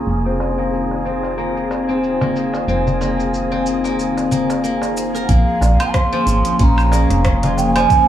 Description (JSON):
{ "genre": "organic downtempo", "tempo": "92 BPM", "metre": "4/4", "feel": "swing 56% on 16ths", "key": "Bb minor", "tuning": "A4 = 440 Hz", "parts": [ { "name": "warm analog pad", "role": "sustained chords", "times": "0.0-8.1 s", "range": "Eb3 to Ab4", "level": "-22 LUFS", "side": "equal", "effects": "chorus, sidechain pumping" }, { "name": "steel-string zither", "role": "arpeggios", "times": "0.0-8.1 s", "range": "F3 to Bb4", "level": "-21 LUFS", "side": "left 3 dB", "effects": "low-pass filter, dub echo" }, { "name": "woody FM bass", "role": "bass", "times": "0.0-7.9 s", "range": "F1 to Bb1", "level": "-19 LUFS", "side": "equal", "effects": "sidechain pumping" }, { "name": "wind-like tuned noise texture", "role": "texture", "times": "0.0-5.3 s", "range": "Ab4 to Ab5", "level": "-32 LUFS", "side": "right 3 dB", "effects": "built-in reverb" }, { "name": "organic electronic drum kit", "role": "drums", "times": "0.1-8.1 s", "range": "hi-hat, rim click, shaker, woodblock", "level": "-27 LUFS", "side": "right 1 dB", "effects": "overdrive" }, { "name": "darbuka", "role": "percussion", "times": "0.4-7.9 s", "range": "none", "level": "-26 LUFS", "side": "right 1 dB", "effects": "none" }, { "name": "breathy mellow bansuri", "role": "melody", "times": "5.2-8.1 s", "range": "F5 to C6", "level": "-18 LUFS", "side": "right 4 dB", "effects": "dub echo" }, { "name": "electronic kick drum", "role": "drums", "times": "5.3-8.0 s", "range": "none", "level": "-17 LUFS", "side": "right 1 dB", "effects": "overdrive" } ], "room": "moderate spring reverb, RT60 2.3 s", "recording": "echo-heavy mix, low-pass filter, small room ambience", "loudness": "-15 LUFS", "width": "side -11 dB against mid", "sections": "0.0-5.3 A section; 5.3-8.1 B section", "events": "filter sweep on guzheng 0.0-5.3; filter sweep 0.0-5.3", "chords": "0.1 Fm7; 5.3 Bbm7", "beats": "| 0.07 0.73 1.38 2.03 | 2.68 3.33 3.99 4.64 | 5.29 5.94 6.60 7.25 | 7.90" }